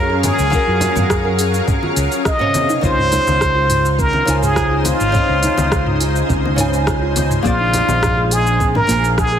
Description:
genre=sunset chillout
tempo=104 BPM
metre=4/4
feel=straight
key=unclear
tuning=A4 = 440 Hz
part: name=trumpet with plunger mute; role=melody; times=0.0-9.4 s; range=F4 to Eb5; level=-18 LUFS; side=equal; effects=tape echo
part: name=nylon-string guitar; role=accompaniment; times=0.0-9.4 s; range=C3 to Ab5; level=-24 LUFS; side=moving between left 4 dB and right 6 dB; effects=auto-pan, tape echo
part: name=shimmering ambient pad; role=sustained chords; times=0.0-9.4 s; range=Db3 to F5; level=-22 LUFS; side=left 2 dB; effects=chorus, built-in reverb
part: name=kalimba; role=arpeggios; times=0.0-9.4 s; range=C4 to Bb4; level=-25 LUFS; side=right 2 dB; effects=tape echo
part: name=mellow fretless electric bass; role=bass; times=0.0-9.4 s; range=Ab1 to Gb2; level=-19 LUFS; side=equal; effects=none
part: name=smooth R&B drum kit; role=drums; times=0.2-9.3 s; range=cabasa, hi-hat, rim click, toms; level=-22 LUFS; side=equal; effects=studio ambience
part: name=congas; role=percussion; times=0.2-8.9 s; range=none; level=-26 LUFS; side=left 3 dB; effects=none
part: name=electronic kick drum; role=drums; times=0.5-9.3 s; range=none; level=-21 LUFS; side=equal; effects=studio ambience
room=light reverb, studio reverb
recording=heavily compressed radio sound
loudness=-13 LUFS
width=side -9 dB against mid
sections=0.0-9.4 A section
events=none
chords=0.0 Gbmaj9; 2.5 Dbmaj9; 7.5 Bb9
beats=| 0.53 1.10 1.68 2.26 | 2.83 3.41 3.99 4.57 | 5.14 5.72 6.30 6.87 | 7.45 8.03 8.60 9.18

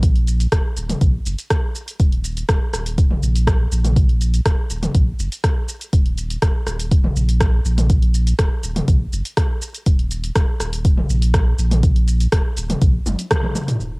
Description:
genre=afro house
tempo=122 BPM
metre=4/4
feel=straight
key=Eb minor pentatonic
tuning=A4 = 440 Hz
part: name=warm sub bass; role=bass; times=0.0-14.0 s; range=Eb1 to Bb1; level=-19 LUFS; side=equal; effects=tube saturation, sidechain pumping
part: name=deep house drum kit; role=drums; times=0.0-13.9 s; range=hi-hat, rim click, shaker, toms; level=-23 LUFS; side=equal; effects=cassette tape
part: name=electronic kick drum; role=drums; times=0.0-13.4 s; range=none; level=-16 LUFS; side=equal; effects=cassette tape
room=light reverb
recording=home recording on cassette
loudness=-16 LUFS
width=side -29 dB against mid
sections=0.0-13.8 A section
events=drum fill 13.1-13.8; band accent 13.3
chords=none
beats=| 0.03 0.52 1.01 1.50 | 2.00 2.49 2.98 3.47 | 3.96 4.46 4.95 5.44 | 5.93 6.42 6.92 7.41 | 7.90 8.39 8.88 9.37 | 9.87 10.36 10.85 11.34 | 11.83 12.32 12.82 13.31 | 13.80

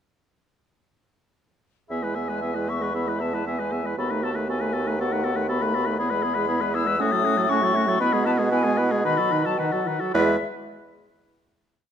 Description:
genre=quick classical-period movement for wind quintet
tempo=106-121 BPM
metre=4/4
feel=rubato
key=E major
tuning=A4 = 440 Hz
part: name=mellow hollow silver concert flute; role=melody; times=1.9-10.4 s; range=E5 to E6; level=-27 LUFS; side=left 7 dB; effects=none
part: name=warm oboe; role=second line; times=1.9-10.4 s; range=F#4 to E5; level=-30 LUFS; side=left 4 dB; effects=none
part: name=clear French horn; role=accompaniment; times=1.9-10.4 s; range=D#3 to B3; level=-28 LUFS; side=equal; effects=none
part: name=warm clarinet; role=accompaniment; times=1.9-10.4 s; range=A3 to G#4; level=-30 LUFS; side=right 9 dB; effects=none
part: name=clear bassoon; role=bass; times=1.9-10.4 s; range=D#2 to B2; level=-27 LUFS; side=right 2 dB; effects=none
room=moderate recital hall reverb, RT60 1.4 s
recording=none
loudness=-21 LUFS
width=side -8 dB against mid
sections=1.9-10.1 A section; 10.1-11.9 final chord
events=slowing down 5.0-10.1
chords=1.9 E; 4.0 B7/D#; 6.0 E; 7.0 F#m/A; 8.0 E/B; 9.0 B7; 10.1 E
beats=| 1.90 2.43 2.94 3.46 | 3.97 4.48 4.99 5.49 | 5.99 6.49 6.99 7.50 | 8.00 8.52 9.04 9.59 | 10.14

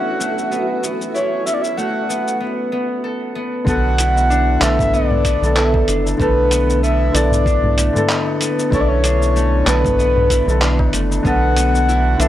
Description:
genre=organic downtempo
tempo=95 BPM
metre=4/4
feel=swing 56% on 16ths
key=B minor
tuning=A4 = 442 Hz
part: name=breathy flute-like synth lead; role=melody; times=0.0-12.3 s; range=A4 to F#5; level=-20 LUFS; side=equal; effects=wide subtle chorus, cassette tape, tape echo
part: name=felt-muted upright piano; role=accompaniment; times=0.0-12.3 s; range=D3 to A4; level=-23 LUFS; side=left 2 dB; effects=sidechain pumping, tape echo
part: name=granular cloud pad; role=sustained chords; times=0.0-2.4 s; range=B3 to F#5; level=-27 LUFS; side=equal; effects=built-in reverb, vintage 12-bit sampler grit, sidechain pumping
part: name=concert harp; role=arpeggios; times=0.0-12.3 s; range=A3 to A4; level=-22 LUFS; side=left 1 dB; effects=tape echo
part: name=bronze singing bowl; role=texture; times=0.0-2.4 s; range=none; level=barely audible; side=none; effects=none
part: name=dusty soul sampler-style drum kit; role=drums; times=0.2-12.3 s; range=handclaps, hi-hat, shaker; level=-22 LUFS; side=equal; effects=overdrive
part: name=round analog bass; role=bass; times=3.7-12.3 s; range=F#1 to B1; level=-18 LUFS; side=right 1 dB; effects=none
part: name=electronic kick drum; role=drums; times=3.7-11.4 s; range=none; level=-21 LUFS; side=equal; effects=overdrive
part: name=tabla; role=percussion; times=4.2-12.3 s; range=none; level=-26 LUFS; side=left 1 dB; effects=none
room=studio reverb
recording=dry, gritty hardware recording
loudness=-14 LUFS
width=side -12 dB against mid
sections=0.0-3.7 A section; 3.7-12.3 B section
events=break 2.4-3.7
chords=0.0 F#m7; 3.7 Bm7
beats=0.51 | 1.14 1.78 2.41 3.04 | 3.67 4.30 4.93 5.57 | 6.20 6.83 7.46 8.09 | 8.72 9.35 9.99 10.62 | 11.25 11.88

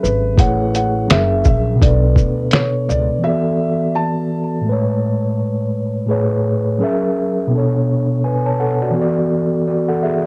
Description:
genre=lo-fi hip hop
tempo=84 BPM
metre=4/4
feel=swing 60% on 16ths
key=A major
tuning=A4 = 442 Hz
part: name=felt-muted upright piano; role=melody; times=0.0-5.3 s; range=B4 to A5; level=-24 LUFS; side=equal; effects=low-pass filter, cassette tape, analog delay
part: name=mellow tine electric piano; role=accompaniment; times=0.0-10.3 s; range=A2 to A5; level=-19 LUFS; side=equal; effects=cassette tape, low-pass filter
part: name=upright bass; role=bass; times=0.0-3.1 s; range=F#1 to D2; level=-21 LUFS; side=equal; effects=none
part: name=lo-fi sampler-style drum kit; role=drums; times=0.0-3.1 s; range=finger snaps, hi-hat, kick drum, shaker, snare drum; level=-16 LUFS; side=equal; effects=none
room=moderate booth ambience, RT60 0.2 s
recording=home recording on cassette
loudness=-17 LUFS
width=mono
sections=0.0-6.1 A section; 6.1-10.3 B section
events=break 3.2-6.1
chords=0.4 Amaj9; 1.1 F#7; 1.8 Bm9; 3.2 E9sus4; 4.7 Amaj9; 6.8 F#7; 7.5 Bm9; 8.9 E9sus4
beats=| 0.38 1.09 1.80 2.52 | 3.23 3.95 4.66 5.38 | 6.09 6.80 7.52 8.23 | 8.95 9.66

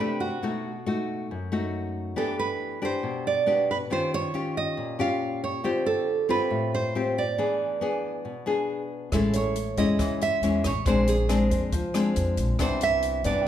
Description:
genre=bossa nova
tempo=138 BPM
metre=4/4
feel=straight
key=unclear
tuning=A4 = 439 Hz
part: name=nylon-string guitar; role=melody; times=0.0-13.5 s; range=F#4 to E#5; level=-27 LUFS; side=right 5 dB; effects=none
part: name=nylon-string guitar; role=accompaniment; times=0.0-13.5 s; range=F#2 to G#4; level=-27 LUFS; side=left 3 dB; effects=none
part: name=upright bass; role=bass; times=9.1-13.4 s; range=A1 to G2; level=-28 LUFS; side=equal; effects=none
part: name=compact cocktail drum kit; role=drums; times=9.1-13.3 s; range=hi-hat, kick drum, rim click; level=-31 LUFS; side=equal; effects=none
part: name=mellow tine electric piano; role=accompaniment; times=9.3-13.5 s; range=C5 to G5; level=-35 LUFS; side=right 3 dB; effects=none
room=moderate recital hall reverb, RT60 1.5 s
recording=recorded in a church or concert hall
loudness=-24 LUFS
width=side -10 dB against mid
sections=0.0-13.5 A section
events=none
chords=0.4 B7; 2.2 Em7; 3.9 D#9; 5.6 Dm7; 7.4 E7; 9.1 Amaj7; 10.9 Bb9; 12.6 Cmaj9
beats=| 0.42 0.86 1.29 1.73 | 2.16 2.60 3.03 3.47 | 3.90 4.34 4.77 5.21 | 5.64 6.08 6.51 6.95 | 7.38 7.82 8.25 8.69 | 9.12 9.56 9.99 10.43 | 10.86 11.30 11.73 12.16 | 12.60 13.03 13.47

